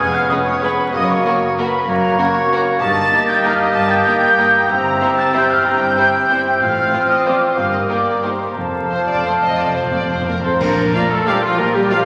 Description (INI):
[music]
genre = classical, orchestral ballroom waltz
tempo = 167-208 BPM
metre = 3/4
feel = rubato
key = Bb major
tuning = A4 = 440 Hz
[part]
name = warm studio violin section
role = melody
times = 0.0-12.0 s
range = A4 to Bb5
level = -28 LUFS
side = equal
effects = none
[part]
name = bright clarinet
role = second line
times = 0.0-12.1 s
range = D4 to C5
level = -28 LUFS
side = equal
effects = none
[part]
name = bright large flute ensemble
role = second line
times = 0.0-12.1 s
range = F5 to A6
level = -20 LUFS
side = equal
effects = none
[part]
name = bright oboe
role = second line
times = 0.0-12.1 s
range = F4 to G5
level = -27 LUFS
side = equal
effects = none
[part]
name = warm bassoon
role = accompaniment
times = 0.0-10.4 s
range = F3 to C4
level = -22 LUFS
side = equal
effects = none
[part]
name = warm French horn section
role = sustained chords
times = 0.0-12.1 s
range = F3 to G4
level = -31 LUFS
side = equal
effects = none
[part]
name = dark studio cello section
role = bass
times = 0.0-12.1 s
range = E#2 to C4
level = -30 LUFS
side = equal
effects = none
[part]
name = dark studio double bass section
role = bass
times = 0.0-11.8 s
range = E#1 to Bb1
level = -33 LUFS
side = equal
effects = none
[part]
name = rich studio violin section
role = second line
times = 0.3-12.0 s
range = Eb4 to F5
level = -28 LUFS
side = equal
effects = none
[part]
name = rich studio viola section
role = accompaniment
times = 0.3-12.1 s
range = F3 to C5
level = -27 LUFS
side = equal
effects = none
[part]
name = timpani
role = percussion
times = 8.6-11.1 s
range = F2 to Bb2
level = -27 LUFS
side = equal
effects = none
[part]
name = clash cymbals and concert bass drum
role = percussion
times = 10.6-11.2 s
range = none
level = -33 LUFS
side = equal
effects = none
[part]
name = mellow trombone section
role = sustained chords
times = 10.9-12.0 s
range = F3 to D4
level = -31 LUFS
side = equal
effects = none
[part]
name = bright trumpet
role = stabs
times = 10.9-12.0 s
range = F5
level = -27 LUFS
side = equal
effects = none
[sound]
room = wet concert hall reverb, RT60 2.1 s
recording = vinyl crackle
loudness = -16 LUFS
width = mono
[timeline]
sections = 0.0-10.6 A section; 10.6-12.1 B section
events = timpani fill 8.6-10.6; band accent 10.6-10.9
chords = 0.0 C#7/E#; 0.9 F#; 2.8 Eb/G; 4.7 C7/G; 6.6 F/A; 7.6 Eb/G; 8.6 F; 10.6 Bb